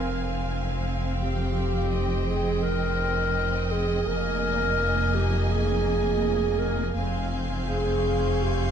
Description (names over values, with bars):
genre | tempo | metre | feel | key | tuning
cinematic, suspense film score | 83 BPM | 4/4 | straight | F minor | A4 = 440 Hz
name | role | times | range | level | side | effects
warm studio violin section | melody | 0.0-8.7 s | G5 to Ab5 | -37 LUFS | left 2 dB | none
dark clarinet | second line | 0.0-8.7 s | G4 to Bb4 | -27 LUFS | right 1 dB | none
rich studio violin section | second line | 0.0-8.7 s | Eb5 to F5 | -35 LUFS | right 1 dB | none
rich studio viola section | accompaniment | 0.0-8.7 s | Bb3 to C4 | -34 LUFS | right 1 dB | none
clear studio cello section | bass | 0.0-8.7 s | F2 | -31 LUFS | right 2 dB | none
rich studio double bass section | bass | 0.0-8.7 s | F1 | -31 LUFS | right 1 dB | none
saturated sub bass | drone | 0.0-8.7 s | F1 | -31 LUFS | left 1 dB | none
rich studio violin section | texture | 0.0-0.8, 7.0-8.7 s | C6 to G6 | -41 LUFS | left 5 dB | none
room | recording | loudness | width
moderate scoring stage reverb, RT60 1.8 s | dark, warm production | -23 LUFS | side -8 dB against mid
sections
0.0-8.7 A section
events
none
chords
0.0 Fm; 4.1 Ebsus4/F; 7.0 Fm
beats
0.48 | 1.20 1.91 2.63 3.35 | 4.07 4.79 5.51 6.23 | 6.95 7.68 8.41